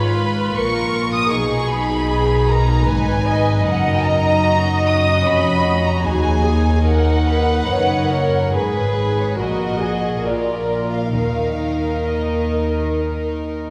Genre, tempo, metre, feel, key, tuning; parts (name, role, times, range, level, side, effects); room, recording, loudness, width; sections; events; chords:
classical, slow romantic movement for string orchestra; 63-79 BPM; 3/4; rubato; Eb minor; A4 = 440 Hz
dark studio violin section; melody; 0.0-13.0 s; Cb5 to Eb6; -26 LUFS; equal
clear studio violin section; second line; 0.0-13.6 s; Db4 to Db5; -26 LUFS; equal
warm studio viola section; accompaniment; 0.0-13.4 s; Gb4 to Eb5; -24 LUFS; equal
rich symphonic cello section; bass; 0.0-13.7 s; Eb2 to Eb3; -26 LUFS; equal
warm studio double bass section; bass; 0.0-13.7 s; F1 to Eb2; -24 LUFS; equal
wet concert hall reverb, RT60 2.5 s; heard from further back in the room; -18 LUFS; mono
0.0-13.7 A section
0.0 Abm; 1.3 Abm/Cb; 3.7 Ebm/Gb; 6.1 Ebm; 8.5 Abmadd11; 9.4 Ebm/Bb; 10.2 Bb; 11.1 Eb5